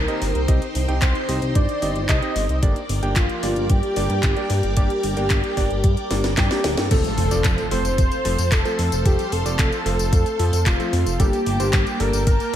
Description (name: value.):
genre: italo disco.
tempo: 112 BPM.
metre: 4/4.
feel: straight.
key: unclear.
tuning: A4 = 440 Hz.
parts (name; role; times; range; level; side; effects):
wide unison lead; melody; 0.0-12.6 s; F4 to Eb5; -25 LUFS; equal; cassette tape, digital delay.
string machine, full ensemble; sustained chords; 0.0-12.6 s; Bb3 to D6; -30 LUFS; left 1 dB; ensemble chorus.
chorused synth bass; bass; 0.0-12.6 s; D1 to G2; -23 LUFS; equal; none.
warm electric grand piano; stabs; 0.1-12.6 s; F3 to G5; -29 LUFS; right 3 dB; none.
house drum kit; drums; 0.1-12.6 s; crash cymbal, handclaps, hi-hat, snare drum, tambourine; -26 LUFS; left 1 dB; gated reverb.
electronic kick drum; drums; 0.5-12.4 s; none; -20 LUFS; equal; none.
impact; sound effects; 6.9-9.1 s; none; -29 LUFS; equal; none.
room: light reverb.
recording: none.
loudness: -18 LUFS.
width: side -11 dB against mid.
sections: 0.0-6.9 A section; 6.9-12.6 B section.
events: drum fill 6.1-6.9; band accent 6.8; impact 6.9-9.1.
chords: 0.0 Cm; 2.6 Gm; 6.9 F; 11.2 Gmadd9.